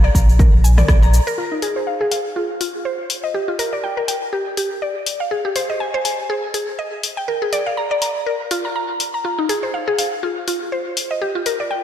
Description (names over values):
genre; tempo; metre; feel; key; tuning
afro house; 122 BPM; 4/4; swing 56% on 16ths; unclear; A4 = 440 Hz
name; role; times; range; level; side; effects
mallet-like synth pluck; arpeggios; 0.0-11.8 s; Eb4 to Bb5; -20 LUFS; equal; chorus, sidechain pumping, diffuse ambient delay
warm sub bass; bass; 0.0-1.2 s; Bb1; -13 LUFS; equal; sidechain pumping
electronic kick drum; drums; 0.1-1.0 s; none; -13 LUFS; equal; none
house drum kit; drums; 0.2-11.6 s; hi-hat, rim click, shaker, toms; -25 LUFS; left 3 dB; none
room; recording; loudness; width
moderate lush hall reverb, RT60 1.9 s; dreamy mix soaked in reverb; -17 LUFS; side -10 dB against mid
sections
0.0-1.4 A section; 1.4-11.8 B section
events
filter sweep on synth pluck 1.4-11.8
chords
0.0 Bb; 1.4 F7(no3); 3.3 G7(no3); 5.3 Abmaj7(no3); 7.3 N.C.; 9.2 F7(no3); 11.2 Gm7